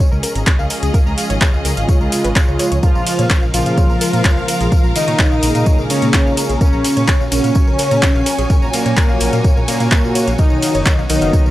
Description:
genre	melodic techno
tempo	127 BPM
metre	4/4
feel	straight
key	Bb phrygian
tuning	A4 = 440 Hz
part	evolving wavetable pad	sustained chords	0.0-11.5 s	Bb2 to Bb4	-27 LUFS	right 1 dB	none
part	tight sequenced synth	arpeggios	0.0-11.5 s	F4 to Db6	-27 LUFS	equal	chorus, sidechain pumping, analog delay
part	deep house drum kit	drums	0.0-11.4 s	handclaps, hi-hat, ride cymbal	-21 LUFS	equal	sidechain pumping on hats, studio reverb, sidechain pumping on cymbals
part	electronic kick drum	drums	0.0-11.4 s	none	-14 LUFS	equal	studio reverb
part	tambourine	percussion	0.0-11.5 s	none	-30 LUFS	left 1 dB	none
part	rich studio string section	texture	0.0-11.5 s	B3 to Bb5	-26 LUFS	left 1 dB	sidechain pumping
part	swelling detuned saw bass	bass	0.1-11.5 s	F#1 to Bb2	-20 LUFS	equal	tube saturation, sidechain pumping
part	brassy analog pad	stabs	1.8-11.3 s	Db3 to Ab4	-23 LUFS	right 1 dB	chorus, sidechain pumping, analog delay
part	analog synth brass	melody	2.8-11.5 s	Bb2 to F4	-18 LUFS	equal	chorus, sidechain pumping, tape echo
part	airy dreamy lead	second line	2.8-11.5 s	Bb4 to F5	-26 LUFS	left 1 dB	chorus, phaser, sidechain pumping, analog delay
room	little or no reverb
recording	dry, gritty hardware recording, transformer saturation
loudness	-12 LUFS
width	side -15 dB against mid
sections	0.0-11.5 A section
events	none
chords	0.0 Db; 2.8 Bbm7; 6.6 Gb/Bb; 10.4 B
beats	0.47 | 0.94 1.41 1.89 2.36 | 2.83 3.30 3.77 4.25 | 4.72 5.19 5.66 6.14 | 6.61 7.08 7.55 8.03 | 8.50 8.97 9.44 9.92 | 10.39 10.86 11.33

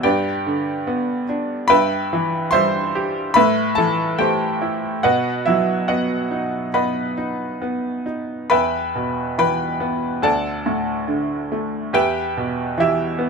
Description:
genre	classical, lyrical solo piano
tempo	71 BPM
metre	4/4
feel	rubato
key	E minor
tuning	A4 = 440 Hz
part	bright upright piano	solo	0.0-13.3 s	D2 to C6	-18 LUFS	equal	none
room	light reverb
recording	close, detailed microphones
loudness	-18 LUFS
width	side -5 dB against mid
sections	0.0-13.3 A section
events	none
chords	0.0 G; 1.7 C/G; 3.4 Am; 5.0 B; 8.5 Em; 10.2 D; 11.9 Em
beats	0.04 0.87 | 1.70 2.52 3.36 4.20 | 5.04 5.88 6.73 7.61 | 8.51 9.39 10.24 11.09 | 11.95 12.78

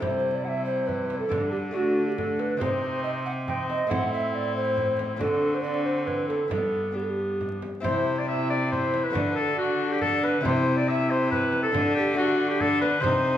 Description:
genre	classical, renaissance-style consort dance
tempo	138 BPM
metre	3/4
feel	straight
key	unclear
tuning	A4 = 439 Hz
part	warm oboe	melody	0.0-13.4 s	D4 to E5	-30 LUFS	left 3 dB	none
part	mellow hollow tenor recorder	second line	0.0-13.4 s	F#4 to G5	-27 LUFS	right 1 dB	none
part	lute	accompaniment	0.0-13.4 s	G2 to A4	-34 LUFS	left 3 dB	none
part	warm viola	accompaniment	0.0-13.4 s	G3 to E4	-32 LUFS	left 2 dB	none
part	rich cello	bass	0.0-13.4 s	G2 to D3	-30 LUFS	right 1 dB	none
part	frame drum	percussion	0.0-13.2 s	none	-34 LUFS	right 2 dB	none
room	wet recital hall reverb, RT60 1.4 s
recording	minimal, uncompressed stereo recording, vinyl crackle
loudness	-23 LUFS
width	side -11 dB against mid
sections	0.0-7.8 A section; 7.8-13.4 A section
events	none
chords	0.0 C; 1.3 Dsus4; 1.7 D; 2.6 Cm; 3.9 Am; 5.2 D7; 6.5 G; 7.8 C; 9.1 D; 10.4 C; 11.7 Dsus4; 12.2 D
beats	| 0.02 0.45 0.88 | 1.31 1.74 2.17 | 2.61 3.04 3.47 | 3.90 4.34 4.77 | 5.20 5.64 6.07 | 6.51 6.96 7.40 | 7.84 8.27 8.71 | 9.14 9.58 10.01 | 10.45 10.88 11.31 | 11.74 12.18 12.61 | 13.04

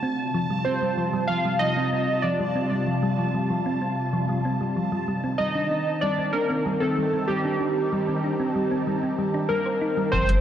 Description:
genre	IDM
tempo	95 BPM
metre	4/4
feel	straight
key	unclear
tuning	A4 = 438 Hz
part	soft string machine	sustained chords	0.0-10.4 s	C3 to G4	-28 LUFS	left 1 dB	ensemble chorus, vintage 12-bit sampler grit
part	thumb-piano-like synth pluck	arpeggios	0.0-10.4 s	F3 to C5	-28 LUFS	equal	chorus, ping-pong delay
part	bubbling stepped-filter texture	texture	0.0-10.1 s	A5	-33 LUFS	right 4 dB	chorus, built-in reverb
part	warbly lo-fi synth keys	melody	0.6-10.4 s	G4 to F5	-25 LUFS	right 1 dB	chorus, digital delay
part	round analog bass	bass	10.1-10.4 s	G1	-22 LUFS	equal	none
part	electronic kick drum	drums	10.1-10.3 s	none	-28 LUFS	equal	none
part	electronic hi-hat	drums	10.3-10.4 s	none	-39 LUFS	left 1 dB	low-pass filter on hats
room	wet echo chamber reverb, RT60 2.0 s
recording	worn, warbling old tape, cassette tape, warbly pitch drift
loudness	-22 LUFS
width	side -10 dB against mid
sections	0.0-10.1 A section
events	filter sweep on string machine 0.0-10.1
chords	0.0 Fsus2; 5.1 Cmadd9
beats	| 0.03 0.66 1.29 1.92 | 2.56 3.19 3.82 4.45 | 5.08 5.71 6.34 6.98 | 7.61 8.24 8.87 9.50 | 10.13

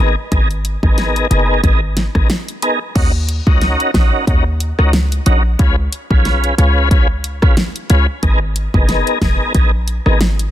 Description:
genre	dancehall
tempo	91 BPM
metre	4/4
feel	swing 56% on 16ths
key	Eb minor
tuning	A4 = 440 Hz
part	tonewheel organ	accompaniment	0.0-10.2 s	Cb4 to Cb5	-18 LUFS	left 1 dB	chorus vibrato, slow rotary speaker, sidechain pumping
part	short 808-style bass	bass	0.0-10.5 s	F1 to Eb2	-15 LUFS	equal	none
part	pop drum kit	drums	0.3-10.5 s	crash cymbal, hi-hat, kick drum, rim click, snare drum	-15 LUFS	equal	none
room	little or no reverb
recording	dense, heavily limited modern master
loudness	-12 LUFS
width	side -12 dB against mid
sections	0.0-3.0 A section; 3.0-10.5 B section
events	none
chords	0.0 Abmadd9; 3.0 Ebm7; 5.6 Db7; 8.2 Abmadd9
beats	| 0.32 0.98 1.64 2.30 | 2.96 3.62 4.28 4.93 | 5.59 6.25 6.91 7.57 | 8.23 8.89 9.55 10.21

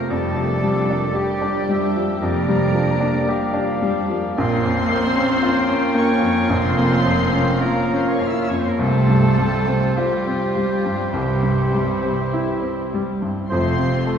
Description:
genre	classical, romantic movement for piano and orchestra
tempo	50-58 BPM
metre	4/4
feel	rubato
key	unclear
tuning	A4 = 440 Hz
part	clear baby grand piano	melody	0.0-14.2 s	Bb1 to C5	-22 LUFS	equal	none
part	muted studio violin section	melody	0.0-14.2 s	G5 to F6	-29 LUFS	left 4 dB	none
part	clear oboe	second line	0.0-14.2 s	G4 to F5	-31 LUFS	right 1 dB	none
part	mellow clarinet	second line	0.0-12.9 s	C5 to G5	-29 LUFS	left 2 dB	none
part	muted studio violin section	second line	0.0-14.2 s	G3 to G4	-31 LUFS	left 1 dB	none
part	muted studio viola section	accompaniment	0.0-14.2 s	G3 to F4	-27 LUFS	equal	none
part	clear trombone section	sustained chords	0.0-13.9 s	E3 to Bb3	-29 LUFS	right 2 dB	none
part	mellow French horn section	sustained chords	0.0-13.9 s	C4 to G4	-28 LUFS	left 3 dB	none
part	mellow trumpet	stabs	0.0-13.9 s	Bb4 to D5	-30 LUFS	left 1 dB	none
part	muted studio cello section	bass	0.1-14.2 s	F2 to C3	-27 LUFS	right 2 dB	none
part	muted studio double bass section	bass	0.1-14.2 s	F1 to C2	-26 LUFS	right 2 dB	none
room	wet scoring stage reverb, RT60 1.8 s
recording	heard from further back in the room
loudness	-17 LUFS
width	side -7 dB against mid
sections	0.0-14.2 A section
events	none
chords	0.1 Gm7/F; 4.4 Bbm; 8.8 Csus4; 11.1 C; 13.5 F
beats	| 0.10 1.15 2.22 3.29 | 4.38 5.44 6.51 7.62 | 8.79 9.97 11.14 12.34 | 13.51

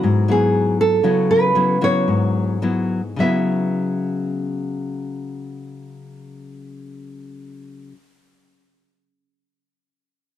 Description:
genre	bossa nova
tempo	105-122 BPM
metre	4/4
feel	straight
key	C# minor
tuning	A4 = 441 Hz
part	nylon-string guitar	melody	0.0-7.9 s	F#4 to E5	-19 LUFS	right 2 dB	none
part	nylon-string guitar	accompaniment	0.0-8.0 s	G#2 to E4	-21 LUFS	left 3 dB	none
room	light reverb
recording	dark, warm production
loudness	-17 LUFS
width	side -11 dB against mid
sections	0.0-3.2 A section; 3.2-7.7 B section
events	slowing down 0.0-3.2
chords	0.0 C#m7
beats	0.04 0.54 | 1.04 1.56 2.08 2.63 | 3.19 3.76 4.33 4.89 | 5.46 6.03 6.60 7.17

